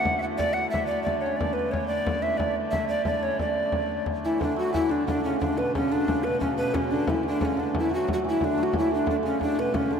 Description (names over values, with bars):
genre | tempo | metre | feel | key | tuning
medieval dance | 120 BPM (dotted quarters) | 6/8 | straight | D major | A4 = 439 Hz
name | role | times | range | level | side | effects
breathy mellow tenor recorder | melody | 0.0-10.0 s | C#4 to F#5 | -26 LUFS | left 1 dB | none
hammered dulcimer | second line | 0.0-10.0 s | B2 to F#4 | -29 LUFS | right 4 dB | none
clear hurdy-gurdy | drone | 0.0-10.0 s | D3 to A3 | -35 LUFS | left 3 dB | none
frame drum | percussion | 0.1-9.9 s | none | -31 LUFS | left 2 dB | none
room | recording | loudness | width
wet cathedral reverb, RT60 5.4 s | minimal, uncompressed stereo recording | -23 LUFS | side -7 dB against mid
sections
0.0-4.4 A section; 4.4-10.0 A section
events
none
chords
none